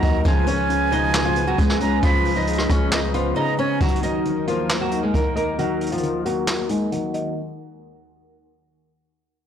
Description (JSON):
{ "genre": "hip hop, trap", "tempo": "135 BPM", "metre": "4/4", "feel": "half-time", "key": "Eb minor", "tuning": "A4 = 443 Hz", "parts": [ { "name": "flamenco guitar", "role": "melody", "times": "0.0-7.3 s", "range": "F3 to Eb5", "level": "-24 LUFS", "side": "equal", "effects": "low-pass filter, digital delay" }, { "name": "breathy concert flute", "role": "second line", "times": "0.0-3.8 s", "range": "Ab5 to Cb6", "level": "-26 LUFS", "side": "right 6 dB", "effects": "digital delay" }, { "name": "dark grand piano", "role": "accompaniment", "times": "0.0-7.4 s", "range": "Db3 to Eb5", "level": "-26 LUFS", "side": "left 4 dB", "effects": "low-pass filter" }, { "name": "hollow soft pad", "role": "sustained chords", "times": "0.0-7.3 s", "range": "Eb2 to Cb5", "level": "-29 LUFS", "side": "equal", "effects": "ensemble chorus, low-pass filter" }, { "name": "growling 808-style bass", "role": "bass", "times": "0.0-3.3 s", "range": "Db2 to Eb2", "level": "-26 LUFS", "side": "equal", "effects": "none" }, { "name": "jazz brush drum kit", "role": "drums", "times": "0.0-7.2 s", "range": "handclaps, hi-hat, kick drum, rim click, snare drum", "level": "-23 LUFS", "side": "equal", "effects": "soft clipping on snare" }, { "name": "chorused polysynth", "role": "stabs", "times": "0.9-1.3 s", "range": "Db2 to F3", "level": "-30 LUFS", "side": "left 3 dB", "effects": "none" } ], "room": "light reverb, studio ambience", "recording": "blown-out, overdriven recording, overdrive", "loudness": "-18 LUFS", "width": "side -8 dB against mid", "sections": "0.0-3.8 A section; 3.8-7.4 B section", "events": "drums muted 3.4-3.8; filter sweep 3.8-7.4", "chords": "0.3 Db7; 3.8 Ebm" }